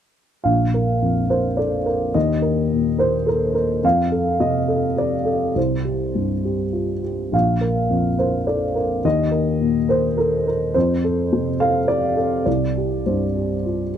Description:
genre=classical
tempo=105 BPM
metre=3/4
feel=rubato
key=Bb major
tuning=A4 = 440 Hz
part: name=dark upright piano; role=accompaniment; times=0.4-14.0 s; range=Bb1 to F5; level=-18 LUFS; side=equal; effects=none
room=light reverb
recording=dark, warm production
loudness=-18 LUFS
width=side -9 dB against mid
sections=0.5-14.0 A section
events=none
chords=0.5 Bb; 2.1 Eb5; 3.8 F; 5.6 C5; 7.3 Bb; 9.0 Eb5; 10.7 F; 12.5 C5

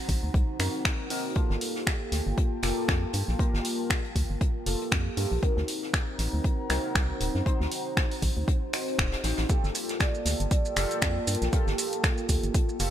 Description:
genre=deep house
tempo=118 BPM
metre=4/4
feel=swing 57% on 16ths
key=G minor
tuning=A4 = 444 Hz
part: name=chorused polysynth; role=stabs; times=0.0-12.9 s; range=Bb3 to C5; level=-33 LUFS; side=equal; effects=phaser, sidechain pumping, ping-pong delay
part: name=warbly tape-like pad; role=texture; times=0.0-12.9 s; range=Bb3 to Bb5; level=-39 LUFS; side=right 1 dB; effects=chorus, built-in reverb, sidechain pumping
part: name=organ-like FM bass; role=bass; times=0.1-12.9 s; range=D1 to G2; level=-29 LUFS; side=equal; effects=none
part: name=electronic kick drum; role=drums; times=0.1-12.7 s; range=none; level=-27 LUFS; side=equal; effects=none
part: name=jazz brush drum kit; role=drums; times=0.1-12.9 s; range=hi-hat, snare drum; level=-38 LUFS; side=left 2 dB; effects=high-pass filter on hats, high-pass filter on snare, high-pass filter on room
part: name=punchy analog drum machine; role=drums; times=0.1-12.9 s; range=finger snaps, hi-hat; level=-32 LUFS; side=equal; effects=none
part: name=maracas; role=percussion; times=9.5-12.9 s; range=none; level=-36 LUFS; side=right 5 dB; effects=none
part: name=vibraphone with soft mallets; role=melody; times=10.0-12.5 s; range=A4 to D5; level=-35 LUFS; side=right 3 dB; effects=ping-pong delay
room=light reverb, small room ambience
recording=none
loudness=-25 LUFS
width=side -11 dB against mid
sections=0.0-12.9 A section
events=filter sweep on analog polysynth 0.0-12.9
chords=0.0 D7b9b13 (rootless); 1.4 Gm9; 5.4 D7b9b13; 9.5 Gm9

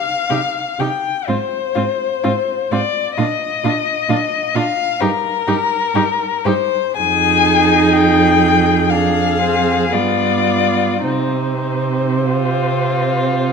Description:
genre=classical, slow romantic movement for string quartet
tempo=50-66 BPM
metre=4/4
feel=rubato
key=C minor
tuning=A4 = 441 Hz
part: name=muted violin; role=melody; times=0.0-13.5 s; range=Bb4 to Ab5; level=-17 LUFS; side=left 9 dB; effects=none
part: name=muted violin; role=second line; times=0.3-13.5 s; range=Eb4 to Ab4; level=-23 LUFS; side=left 3 dB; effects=none
part: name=muted viola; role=accompaniment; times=0.3-13.5 s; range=B3 to Eb4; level=-21 LUFS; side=right 4 dB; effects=none
part: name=muted cello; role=bass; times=0.3-13.5 s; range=F2 to C3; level=-20 LUFS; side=right 7 dB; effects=none
room=wet recital hall reverb, RT60 1.7 s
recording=none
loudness=-14 LUFS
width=side -5 dB against mid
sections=0.0-13.5 A section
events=none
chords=0.0 Cm; 1.3 Fm/Ab (rootless); 3.2 Bb; 5.0 Eb/G; 7.0 Fm7; 8.9 Ddim/F; 9.9 G7; 11.0 Cm

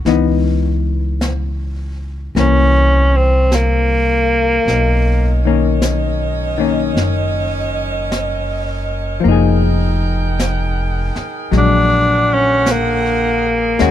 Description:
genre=jazz ballad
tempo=52 BPM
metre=4/4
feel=swing 68% on 8ths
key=unclear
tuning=A4 = 439 Hz
part: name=hollow-body jazz guitar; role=accompaniment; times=0.0-13.9 s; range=D#3 to Bb4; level=-18 LUFS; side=left 8 dB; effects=none
part: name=upright bass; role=bass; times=0.0-13.9 s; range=F1 to Eb2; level=-17 LUFS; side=equal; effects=none
part: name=jazz brush drum kit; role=drums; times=0.1-13.9 s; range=brushed snare drum, hi-hat, snare drum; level=-25 LUFS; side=left 1 dB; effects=none
part: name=warm tenor saxophone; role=melody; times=2.4-13.9 s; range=Bb3 to D4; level=-14 LUFS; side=equal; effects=none
part: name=clear saxophone section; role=sustained chords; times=4.7-13.9 s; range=D3 to G5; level=-23 LUFS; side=right 4 dB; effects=none
room=little or no reverb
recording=none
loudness=-13 LUFS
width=side -11 dB against mid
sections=0.0-13.9 A section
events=tenor saxophone solo 0.0-13.9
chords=0.1 Dbm9; 2.4 C7; 4.7 Bmaj9; 9.3 Fm11; 11.5 Bb7b13

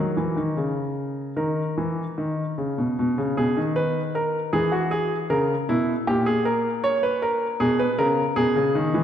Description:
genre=classical, baroque-style two-part invention for grand piano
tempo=74-79 BPM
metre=4/4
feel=straight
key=G# minor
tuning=A4 = 439 Hz
part: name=clear baby grand piano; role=solo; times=0.0-9.0 s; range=A#2 to C#5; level=-21 LUFS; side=equal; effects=none
room=wet scoring stage reverb, RT60 1.6 s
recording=dark, warm production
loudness=-21 LUFS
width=side -9 dB against mid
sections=0.0-3.0 A section; 3.0-9.0 B section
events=none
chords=0.0 D#5; 3.0 G#m/B; 4.5 A#m7b5/E; 6.1 A#m7; 7.6 G#m/B

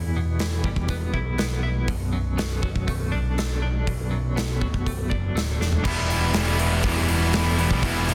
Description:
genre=quiet-loud alternative rock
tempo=121 BPM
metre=4/4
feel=straight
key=unclear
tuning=A4 = 440 Hz
part: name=twelve-string electric guitar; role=arpeggios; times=0.0-5.9 s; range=B1 to E4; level=-32 LUFS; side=equal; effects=tremolo
part: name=overdriven picked electric bass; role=bass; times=0.0-8.1 s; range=B0 to E2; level=-28 LUFS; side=equal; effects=none
part: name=big rock drum kit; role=drums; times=0.4-8.1 s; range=crash cymbal, hi-hat, kick drum, snare drum, toms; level=-30 LUFS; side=equal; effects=none
part: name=distorted electric guitar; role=riff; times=5.8-8.1 s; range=E2 to E4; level=-31 LUFS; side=equal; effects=overdrive
part: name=high-gain distorted guitar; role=riff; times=5.8-8.1 s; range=E2 to E4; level=-31 LUFS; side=equal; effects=distortion
part: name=tight distorted guitar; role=riff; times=5.8-8.1 s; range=E2 to E4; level=-28 LUFS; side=equal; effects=distortion
room=little or no reverb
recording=dense, heavily limited modern master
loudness=-24 LUFS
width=mono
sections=0.0-5.9 A section; 5.9-8.1 B section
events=drum fill 5.6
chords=0.0 Em; 1.9 Bm7; 5.9 Em

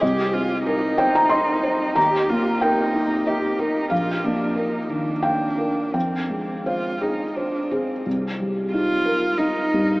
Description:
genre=neoclassical piano and strings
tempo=83-94 BPM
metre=3/4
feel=rubato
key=unclear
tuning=A4 = 439 Hz
part: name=dark cello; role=second line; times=0.0-10.0 s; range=C4 to G4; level=-24 LUFS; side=right 1 dB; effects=none
part: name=felt-muted upright piano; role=accompaniment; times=0.0-10.0 s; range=Bb1 to C6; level=-21 LUFS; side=equal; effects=none
room=wet huge ambient reverb, RT60 8.9 s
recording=in a vast, echoing space, small speaker sound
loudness=-19 LUFS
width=side -22 dB against mid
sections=0.0-8.1 A section; 8.1-10.0 A section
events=none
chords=0.0 Cm7; 2.0 Eb; 3.9 Bbsus4; 5.9 Fm; 8.1 Cm7

